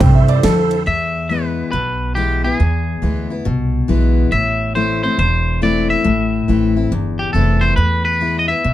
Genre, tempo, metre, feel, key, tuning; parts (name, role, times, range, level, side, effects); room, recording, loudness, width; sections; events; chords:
honky-tonk and classic country; 139 BPM; 4/4; swing 65% on 8ths; A4 = 439 Hz
bright upright piano; second line; 0.0-0.8 s; A4 to G5; -18 LUFS; right 4 dB
bright tonewheel organ; accompaniment; 0.0-0.8 s; E4 to C5; -24 LUFS; right 8 dB; chorus vibrato, fast rotary speaker
picked steel-string acoustic guitar; accompaniment; 0.0-8.7 s; E2 to E4; -19 LUFS; left 5 dB
upright bass; bass; 0.0-8.7 s; E1 to D3; -18 LUFS; right 1 dB
dubstep drum kit; drums; 0.0-0.8 s; kick drum, ride cymbal, snare drum; -16 LUFS; right 1 dB
twangy electric guitar; melody; 0.9-8.7 s; G4 to E5; -19 LUFS; equal
light reverb; dark, warm production; -14 LUFS; side -13 dB against mid
0.9-7.8 A section
0.0 Am; 0.9 E; 4.3 Am; 7.8 E